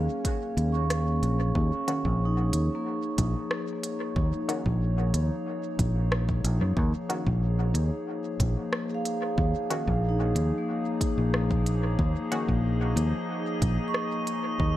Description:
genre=ambient dub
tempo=92 BPM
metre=4/4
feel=straight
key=Eb minor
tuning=A4 = 440 Hz
part: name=warbly tape-like pad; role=sustained chords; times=0.0-14.8 s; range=F3 to Db5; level=-33 LUFS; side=left 2 dB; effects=chorus, built-in reverb
part: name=vibraphone with soft mallets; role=arpeggios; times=0.0-14.8 s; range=Bb3 to Db6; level=-33 LUFS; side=right 1 dB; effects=analog delay
part: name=fingered electric bass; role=bass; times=0.0-14.7 s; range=Bb1 to Gb2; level=-25 LUFS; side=equal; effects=none
part: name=electronic kick drum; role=drums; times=0.2-14.7 s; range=none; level=-29 LUFS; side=equal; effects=overdrive, studio reverb
part: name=organic electronic drum kit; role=drums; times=0.2-14.4 s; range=hi-hat, rim click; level=-33 LUFS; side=equal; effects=studio reverb, dub echo
part: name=filtered dub chord stab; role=stabs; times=1.9-12.5 s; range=Eb3 to Gb4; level=-36 LUFS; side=left 1 dB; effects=chorus, dub echo
part: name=drifting glass-harmonics texture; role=texture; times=12.5-14.8 s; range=Eb4 to Eb5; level=-38 LUFS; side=equal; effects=chorus, built-in reverb
room=light reverb, digital ambience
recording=echo-heavy mix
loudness=-25 LUFS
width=side -14 dB against mid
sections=0.0-1.6 A section; 1.6-14.8 B section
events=none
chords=0.0 Ebm7; 1.6 Eb7(no3)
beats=0.25 0.90 | 1.55 2.20 2.86 3.51 | 4.16 4.81 5.46 6.12 | 6.77 7.42 8.07 8.73 | 9.38 10.03 10.68 11.33 | 11.99 12.64 13.29 13.94 | 14.60

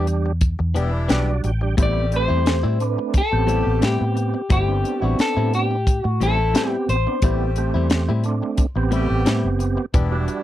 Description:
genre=straight-eighth soul blues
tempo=88 BPM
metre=4/4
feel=straight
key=unclear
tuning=A4 = 440 Hz
part: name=overdriven tonewheel organ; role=accompaniment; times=0.0-10.4 s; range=G3 to G5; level=-25 LUFS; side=right 5 dB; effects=slow rotary speaker, chorus vibrato
part: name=direct-recorded clean electric guitar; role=stabs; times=0.0-10.3 s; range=A2 to G4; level=-26 LUFS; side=left 6 dB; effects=none
part: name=vintage muted fingered electric bass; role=bass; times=0.0-10.3 s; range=E1 to A2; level=-21 LUFS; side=equal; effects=none
part: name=tight funk drum kit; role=drums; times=0.1-10.4 s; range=hi-hat, kick drum, snare drum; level=-20 LUFS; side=equal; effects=none
part: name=warm horn section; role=sustained chords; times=0.8-10.4 s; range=E3 to G4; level=-32 LUFS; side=left 1 dB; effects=none
part: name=electric guitar through a small old amp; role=melody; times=1.8-8.9 s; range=G4 to D5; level=-24 LUFS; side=left 2 dB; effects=none
room=little or no reverb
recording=dry, close 1970s-style studio recording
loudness=-18 LUFS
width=side -13 dB against mid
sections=0.0-10.4 A section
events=tonewheel organ fill 0.8-1.8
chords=0.0 Em7; 1.8 Am7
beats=0.42 1.10 | 1.78 2.46 3.14 3.83 | 4.51 5.19 5.87 6.55 | 7.23 7.91 8.59 9.27 | 9.95

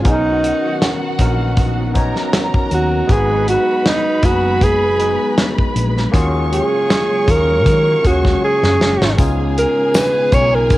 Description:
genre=lush 1970s-style soul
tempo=79 BPM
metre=4/4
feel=swing 54% on 16ths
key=Eb minor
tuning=A4 = 440 Hz
part: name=breathy alto saxophone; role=melody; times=0.0-10.8 s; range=D#4 to Db5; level=-15 LUFS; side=right 1 dB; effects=cassette tape
part: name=warm studio violin section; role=second line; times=0.0-10.8 s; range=F#4 to Db6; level=-25 LUFS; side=equal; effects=cassette tape
part: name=overdriven tine electric piano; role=accompaniment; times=0.0-10.8 s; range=Ab3 to F5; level=-22 LUFS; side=left 2 dB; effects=wide subtle chorus, cassette tape
part: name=string machine, full ensemble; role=sustained chords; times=0.0-10.8 s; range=Db3 to F5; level=-26 LUFS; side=equal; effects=ensemble chorus, cassette tape
part: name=hollow-body short-scale fingered electric bass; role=bass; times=0.0-10.8 s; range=Gb1 to Eb3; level=-19 LUFS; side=equal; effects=none
part: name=warm soul drum kit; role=drums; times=0.0-10.8 s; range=hi-hat, kick drum, snare drum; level=-16 LUFS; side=equal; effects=cassette tape
part: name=tambourine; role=percussion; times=9.2-10.5 s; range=none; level=-33 LUFS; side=left 5 dB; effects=none
room=light reverb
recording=home recording on cassette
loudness=-13 LUFS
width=side -16 dB against mid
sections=0.0-10.8 A section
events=alto saxophone solo 0.0-10.8; drum fill 8.4-9.2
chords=0.1 Bmaj7; 3.1 Abm7; 6.1 Ebm11; 9.2 Db7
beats=| 0.06 0.81 1.57 2.33 | 3.10 3.86 4.62 5.38 | 6.14 6.90 7.66 8.42 | 9.18 9.95 10.71

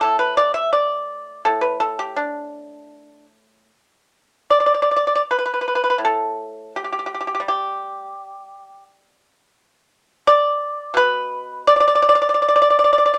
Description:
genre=chinese traditional, Chinese solo plucked strings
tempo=72-88 BPM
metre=4/4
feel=rubato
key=unclear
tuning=A4 = 440 Hz
part: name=pipa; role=solo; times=0.0-13.2 s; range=A2 to E5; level=-19 LUFS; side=equal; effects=none
room=moderate studio reverb, RT60 0.5 s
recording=none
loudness=-19 LUFS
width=mono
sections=0.0-4.5 A section; 4.5-13.2 B section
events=none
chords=none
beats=0.04 0.76 | 1.47 2.18 2.92 3.71 | 4.50 5.26 6.01 6.74 | 7.44 8.13 8.85 9.56 | 10.27 10.96 11.65 12.34 | 13.03

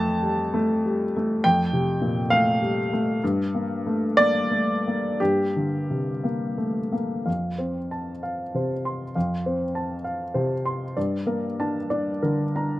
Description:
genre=neoclassical minimalist piano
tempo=57-69 BPM (dotted quarters)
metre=6/8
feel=rubato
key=F major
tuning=A4 = 442 Hz
part: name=warm baby grand piano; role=solo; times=0.0-12.8 s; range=F2 to C6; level=-22 LUFS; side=equal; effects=none
room=little or no reverb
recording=recorded outdoors, with no room sound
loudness=-22 LUFS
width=side -16 dB against mid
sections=0.0-7.3 A section; 7.3-12.8 B section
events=none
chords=0.0 F; 3.2 Gmadd9; 7.3 F; 11.0 Gmadd9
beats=0.53 | 1.43 2.31 | 3.22 4.17 | 5.19 6.23 | 7.27 8.23 | 9.15 10.05 | 10.96 11.89

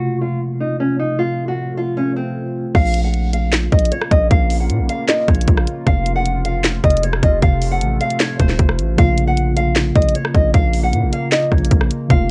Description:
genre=hip hop, trap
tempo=154 BPM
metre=4/4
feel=half-time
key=Bb harmonic minor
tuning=A4 = 438 Hz
part: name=nylon-string guitar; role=melody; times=0.0-12.3 s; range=C4 to Gb5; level=-23 LUFS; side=equal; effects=low-pass filter
part: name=mellow tine electric piano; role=accompaniment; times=0.0-2.8, 9.0-12.3 s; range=C3 to F4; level=-24 LUFS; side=equal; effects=low-pass filter
part: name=deep dark ambient pad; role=sustained chords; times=0.4-12.3 s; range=C3 to F4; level=-29 LUFS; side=equal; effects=chorus, built-in reverb, low-pass filter
part: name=distorted 808-style bass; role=bass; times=2.7-12.3 s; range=Eb1 to Bb2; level=-20 LUFS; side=equal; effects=distortion
part: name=trap drum kit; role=drums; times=2.7-12.2 s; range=crash cymbal, hi-hat, kick drum, rim click, snare drum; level=-18 LUFS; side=equal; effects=none
room=light reverb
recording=worn, warbling old tape, cassette tape, warbly pitch drift, nothing above 11.0 kHz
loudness=-17 LUFS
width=mono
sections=0.0-2.7 A section; 2.7-12.3 B section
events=none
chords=0.0 F; 2.7 Bbm; 5.9 F; 9.0 Bbm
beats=0.02 0.41 0.80 | 1.19 1.58 1.97 2.36 | 2.75 3.14 3.53 3.92 | 4.31 4.70 5.09 5.48 | 5.87 6.25 6.64 7.03 | 7.42 7.81 8.20 8.59 | 8.98 9.37 9.76 10.15 | 10.54 10.93 11.32 11.71 | 12.10

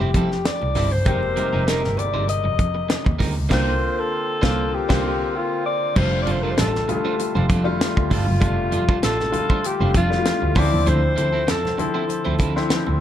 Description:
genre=polished 1980s jazz-funk pop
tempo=98 BPM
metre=4/4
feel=swing 54% on 16ths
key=F major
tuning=A4 = 440 Hz
part: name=mellow alto saxophone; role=melody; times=0.0-12.7 s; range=F4 to Eb5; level=-24 LUFS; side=left 2 dB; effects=none
part: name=clear grand piano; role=accompaniment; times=0.0-13.0 s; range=C3 to G4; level=-26 LUFS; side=left 3 dB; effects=wide subtle chorus
part: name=electric guitar at the edge of break-up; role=riff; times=0.0-12.9 s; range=F3 to C5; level=-30 LUFS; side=right 5 dB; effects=lush chorus
part: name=warm double bass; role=bass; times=0.0-13.0 s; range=F1 to D3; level=-23 LUFS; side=equal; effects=none
part: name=congas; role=percussion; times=0.0-13.0 s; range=none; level=-35 LUFS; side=right 3 dB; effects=none
part: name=tight funk drum kit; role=drums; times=0.1-12.9 s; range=crash cymbal, hi-hat, kick drum, snare drum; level=-23 LUFS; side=equal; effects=none
room=light reverb, small room ambience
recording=dark, warm production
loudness=-18 LUFS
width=side -10 dB against mid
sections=0.0-6.0 A section; 6.0-13.0 B section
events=band accent 3.5-6.0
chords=0.0 Fmaj9; 1.1 Abmaj9/F; 3.5 C9sus4; 6.0 F69; 10.6 Dm9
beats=0.45 | 1.06 1.68 2.29 2.90 | 3.51 4.13 4.74 5.35 | 5.96 6.58 7.19 7.80 | 8.41 9.03 9.64 10.25 | 10.86 11.48 12.09 12.70

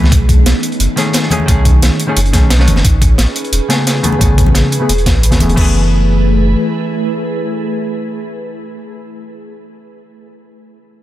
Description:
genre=liquid drum and bass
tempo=176 BPM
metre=4/4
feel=straight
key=F# dorian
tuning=A4 = 440 Hz
part: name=archtop guitar, miked and amplified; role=accompaniment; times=0.0-8.9 s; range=C#3 to B4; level=-18 LUFS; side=equal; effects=low-pass filter, digital delay
part: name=glassy FM pad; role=sustained chords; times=0.0-8.8 s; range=A3 to B4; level=-20 LUFS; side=equal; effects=ensemble chorus, built-in reverb, sidechain pumping
part: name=warm sub bass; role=bass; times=0.0-6.6 s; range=E1 to C#2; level=-11 LUFS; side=equal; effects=none
part: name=crunchy breakbeat drum kit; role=drums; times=0.0-5.6 s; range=hi-hat, snare drum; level=-18 LUFS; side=equal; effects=high-pass filter on hats, high-pass filter on snare, high-pass filter on room
part: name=congas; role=percussion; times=0.0-5.6 s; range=none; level=-20 LUFS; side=left 2 dB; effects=none
part: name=drum and bass drum kit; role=drums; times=0.1-5.6 s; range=crash cymbal, hi-hat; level=-20 LUFS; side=equal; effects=overdrive
part: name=electronic kick drum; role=drums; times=0.1-5.6 s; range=none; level=-14 LUFS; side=equal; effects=none
room=little or no reverb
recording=none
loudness=-10 LUFS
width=side -14 dB against mid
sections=0.0-5.6 A section; 5.6-8.3 B section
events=filter sweep on hollow-body jazz guitar 0.0-5.6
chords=0.1 B13; 2.8 Amaj9; 5.6 F#m11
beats=| 0.12 0.46 0.80 1.14 | 1.48 1.82 2.16 2.50 | 2.85 3.19 3.53 3.87 | 4.21 4.55 4.89 5.23 | 5.57 5.91 6.25 6.60 | 6.94 7.28 7.62 7.96

